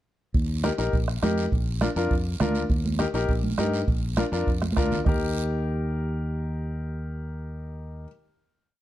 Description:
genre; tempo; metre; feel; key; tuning
latin, cumbia; 203 BPM; 4/4; straight; Eb major; A4 = 441 Hz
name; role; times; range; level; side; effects
fingered electric bass; bass; 0.3-8.1 s; Bb1 to G2; -28 LUFS; equal; none
bombo; percussion; 0.3-5.1 s; none; -26 LUFS; right 1 dB; none
congas; percussion; 0.3-5.1 s; none; -29 LUFS; right 3 dB; none
guiro; percussion; 0.3-5.1 s; none; -40 LUFS; right 6 dB; none
clear upright piano; accompaniment; 0.6-8.1 s; D4 to Bb4; -29 LUFS; left 3 dB; none
room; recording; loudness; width
light reverb; dark, warm production; -23 LUFS; side -14 dB against mid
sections
0.3-5.1 groove; 5.1-7.4 final chord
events
drum fill 4.6-5.1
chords
0.3 Eb; 1.5 Bb; 2.7 Eb; 3.9 Bb; 5.1 Eb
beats
| 0.34 0.64 0.93 1.23 | 1.52 1.81 2.11 2.40 | 2.70 2.99 3.29 3.58 | 3.88 4.17 4.47 4.77 | 5.06 5.36 5.65 5.95 | 6.24 6.54 6.83 7.13

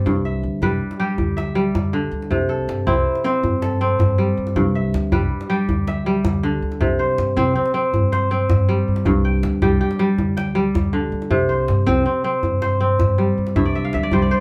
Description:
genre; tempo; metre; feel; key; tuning
west african traditional, West African string and xylophone music; 107 BPM (dotted quarters); 12/8; straight; C major; A4 = 437 Hz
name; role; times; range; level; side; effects
kora; arpeggios; 0.0-14.4 s; G2 to G5; -22 LUFS; equal; none
upright bass; bass; 0.0-14.3 s; C2 to G2; -24 LUFS; equal; none
djembe; percussion; 0.1-14.4 s; none; -27 LUFS; equal; none
room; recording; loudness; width
wet studio ambience, RT60 0.5 s; band playing live in one room; -19 LUFS; mono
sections
0.0-6.8 A section; 6.8-14.4 B section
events
kora fill 13.6-14.4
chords
0.1 G/C; 2.3 C; 4.6 G/C; 6.8 C5; 9.1 G5/C; 11.3 C5; 13.6 G5/C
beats
| 0.06 0.62 1.19 1.75 | 2.31 2.87 3.43 4.00 | 4.56 5.12 5.68 6.25 | 6.81 7.37 7.93 8.50 | 9.06 9.62 10.19 10.75 | 11.31 11.87 12.44 13.00 | 13.56 14.12

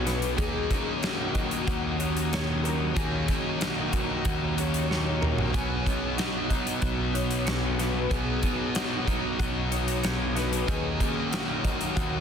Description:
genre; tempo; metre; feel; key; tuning
rock, shoegaze and dream pop; 93 BPM; 4/4; straight; unclear; A4 = 440 Hz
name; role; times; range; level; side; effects
string machine, cellos; sustained chords; 0.0-12.2 s; F#4 to D#6; -38 LUFS; right 1 dB; ensemble chorus
fingerpicked twelve-string acoustic guitar; arpeggios; 0.0-12.2 s; D#4 to C#5; -36 LUFS; left 6 dB; ensemble chorus, tape echo
electric guitar through a small old amp; riff; 0.0-12.2 s; D#3 to C#5; -35 LUFS; right 13 dB; reverse reverb
sludgy distorted guitar; riff; 0.0-12.2 s; B2 to D#4; -32 LUFS; right 1 dB; overdrive
thick fuzz guitar; riff; 0.0-12.2 s; D#3 to F#4; -33 LUFS; left 12 dB; distortion, wide subtle chorus
fuzz fingered electric bass; bass; 0.0-12.2 s; B1 to D#2; -31 LUFS; equal; overdrive
huge arena drum kit; drums; 0.1-12.1 s; hi-hat, kick drum, snare drum, toms; -30 LUFS; equal; none
room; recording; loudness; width
small room ambience; dense, heavily limited modern master; -25 LUFS; side -7 dB against mid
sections
0.0-12.2 A section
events
drum fill 4.9-5.5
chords
0.4 D#m7; 5.5 Badd9; 10.7 D#m7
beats
| 0.39 1.03 1.68 2.32 | 2.96 3.61 4.25 4.89 | 5.54 6.18 6.82 7.46 | 8.11 8.75 9.39 10.04 | 10.68 11.32 11.96

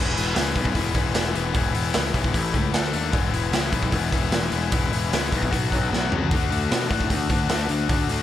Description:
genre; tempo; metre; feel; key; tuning
punk rock; 151 BPM; 4/4; straight; E major; A4 = 442 Hz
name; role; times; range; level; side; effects
crunchy overdriven guitar; riff; 0.0-8.2 s; A2 to A4; -25 LUFS; left 10 dB; none
fuzz picked electric bass; bass; 0.0-8.2 s; E1 to B2; -26 LUFS; equal; overdrive
raw garage drum kit; drums; 0.2-8.2 s; hi-hat, kick drum, snare drum, toms; -24 LUFS; right 1 dB; none
room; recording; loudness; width
light reverb; none; -20 LUFS; side -12 dB against mid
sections
0.0-8.2 A section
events
drum fill 5.9-6.3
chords
0.0 E; 2.3 A5; 2.7 D5; 3.1 E; 5.5 B5; 6.3 D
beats
0.35 0.75 1.15 | 1.54 1.94 2.34 2.73 | 3.13 3.53 3.92 4.32 | 4.72 5.12 5.51 5.91 | 6.31 6.70 7.10 7.50 | 7.89

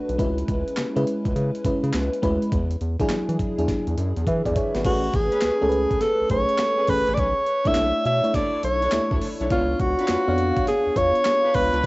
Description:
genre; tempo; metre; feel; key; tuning
R&B, new jack swing; 103 BPM; 4/4; swing 65% on 16ths; unclear; A4 = 440 Hz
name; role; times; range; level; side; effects
FM electric piano with soft pad layer; accompaniment; 0.0-11.9 s; F#3 to E#5; -25 LUFS; equal; chorus, cassette tape
round analog bass; bass; 0.1-11.9 s; G#1 to E3; -26 LUFS; equal; none
breakbeat sampler-style drum kit; drums; 0.1-11.9 s; crash cymbal, handclaps, hi-hat, kick drum, snare drum; -27 LUFS; equal; overdrive, cassette tape
clear alto saxophone; melody; 4.9-11.9 s; E#4 to E5; -21 LUFS; equal; cassette tape
dark studio string section; stabs; 5.3-11.9 s; C#4 to C#5; -32 LUFS; left 1 dB; cassette tape
room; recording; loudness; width
moderate booth ambience, RT60 0.3 s; home recording on cassette, nothing above 7.9 kHz; -20 LUFS; side -22 dB against mid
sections
0.0-4.8 A section; 4.8-11.9 B section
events
drum fill 4.3-4.8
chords
0.2 C#m7; 2.5 E9; 4.8 Amaj9; 7.2 Bm11; 9.5 C#7b9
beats
| 0.19 0.77 1.35 1.94 | 2.52 3.10 3.68 4.26 | 4.85 5.43 6.01 6.59 | 7.18 7.76 8.34 8.93 | 9.51 10.09 10.67 11.26 | 11.84

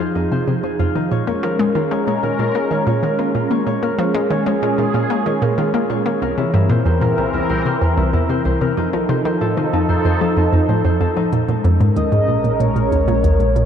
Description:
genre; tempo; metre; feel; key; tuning
ambient, sequencer-driven space music; 94 BPM; 4/4; straight; F minor; A4 = 440 Hz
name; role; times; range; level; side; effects
sweeping resonant pad; sustained chords; 0.0-13.7 s; E3 to Bb4; -20 LUFS; equal; chorus
Celtic harp; arpeggios; 0.0-13.7 s; Eb4 to Db5; -24 LUFS; moving between left 6 dB and right 1 dB; auto-pan, ping-pong delay
analog pluck; riff; 0.0-13.7 s; C2 to Bb3; -18 LUFS; equal; chorus, ping-pong delay
round analog bass; bass; 11.3-13.7 s; Bb1; -22 LUFS; equal; none
minimal click drum kit; percussion; 11.3-13.7 s; hi-hat, toms; -42 LUFS; left 3 dB; none
pulse-width lead; melody; 12.0-13.7 s; Db5 to Eb5; -20 LUFS; right 1 dB; chorus, ping-pong delay
room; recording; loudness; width
moderate huge ambient reverb, RT60 8.5 s; dark, warm production; -15 LUFS; side -8 dB against mid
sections
0.0-11.3 A section; 11.3-13.7 B section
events
none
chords
0.0 Fm7; 1.1 Bbm7; 6.2 C7; 8.8 F7; 11.3 Bbm7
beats
0.47 | 1.11 1.75 2.39 3.03 | 3.67 4.30 4.94 5.58 | 6.22 6.86 7.50 8.13 | 8.77 9.41 10.05 10.69 | 11.33 11.96 12.60 13.24

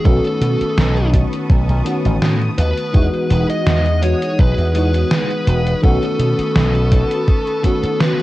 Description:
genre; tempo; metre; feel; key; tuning
vaporwave; 83 BPM; 4/4; swing 54% on 16ths; unclear; A4 = 439 Hz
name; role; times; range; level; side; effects
high-gain lead guitar; melody; 0.0-8.2 s; A4 to D#5; -22 LUFS; left 1 dB; distortion, tape echo
FM electric piano with soft pad layer; accompaniment; 0.0-8.2 s; D#3 to F#4; -20 LUFS; left 1 dB; ensemble chorus
rich symphonic string section; sustained chords; 0.0-8.2 s; G#4 to D#6; -30 LUFS; equal; none
slap bass with an envelope filter; bass; 0.1-7.9 s; E1 to B2; -16 LUFS; equal; none
electronic kick drum; drums; 0.1-7.8 s; none; -14 LUFS; equal; none
gated 80s digital drum machine; drums; 0.1-8.2 s; hi-hat, snare drum; -20 LUFS; right 1 dB; gated reverb, gated reverb snare
room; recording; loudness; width
light reverb; cassette tape; -14 LUFS; side -17 dB against mid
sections
0.0-8.2 A section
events
none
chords
0.1 B9; 2.9 Emaj9; 5.8 B9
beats
| 0.05 0.77 1.50 2.22 | 2.94 3.67 4.39 5.11 | 5.83 6.56 7.28 8.00

